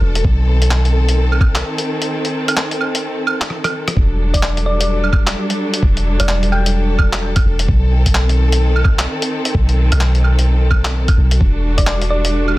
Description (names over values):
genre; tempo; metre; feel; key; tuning
future garage; 129 BPM; 4/4; swing 61% on 16ths; E minor; A4 = 443 Hz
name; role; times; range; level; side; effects
clear symphonic string section; sustained chords; 0.0-12.6 s; D#3 to A4; -21 LUFS; equal; vintage 12-bit sampler grit, sidechain pumping
soft 808-style bass; bass; 0.0-12.6 s; E1 to B1; -15 LUFS; equal; none
electronic kick drum; drums; 0.2-11.9 s; none; -15 LUFS; equal; studio reverb
lo-fi sampler-style drum kit; drums; 0.2-12.6 s; claves, handclaps, hi-hat, rim click; -20 LUFS; right 1 dB; studio reverb
thumb-piano-like synth pluck; melody; 4.3-6.9, 11.8-12.2 s; D5 to G5; -25 LUFS; equal; chorus, cassette tape, tape echo
room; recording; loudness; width
little or no reverb; dense, heavily limited modern master; -13 LUFS; side -18 dB against mid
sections
0.0-4.0 A section; 4.0-12.6 A section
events
break 2.1-4.0; drum fill 3.5-4.0; band accent 3.9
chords
0.2 B7b9; 4.0 Em11; 7.7 B7b9; 11.4 Em11